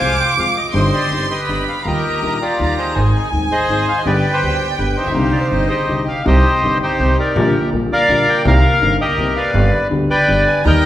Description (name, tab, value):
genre	tango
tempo	164 BPM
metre	3/4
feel	rubato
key	C minor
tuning	A4 = 440 Hz
part	bandoneon	melody	0.0-10.9 s	Eb4 to Ab5	-17 LUFS	left 1 dB	none
part	warm chamber violin section	second line	0.0-6.0, 10.6-10.9 s	Eb5 to D6	-22 LUFS	right 2 dB	none
part	dark upright piano	accompaniment	0.0-10.8 s	Eb1 to Ab4	-19 LUFS	left 2 dB	none
part	upright bass	bass	0.0-10.8 s	G1 to F2	-19 LUFS	right 1 dB	none
part	mellow clarinet	second line	5.3-6.2 s	G4 to D5	-26 LUFS	right 4 dB	none
room	wet recital hall reverb, RT60 1.8 s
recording	recorded in a church or concert hall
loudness	-13 LUFS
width	side -12 dB against mid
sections	0.0-6.3 A section; 6.3-10.9 B section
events	none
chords	0.0 Fm; 0.7 Cm/G; 1.5 G; 1.9 Ebadd9; 3.0 Ab; 4.1 G; 5.1 Cmadd9; 6.3 Cm; 7.4 Gm/Bb; 8.5 Cm7; 9.5 G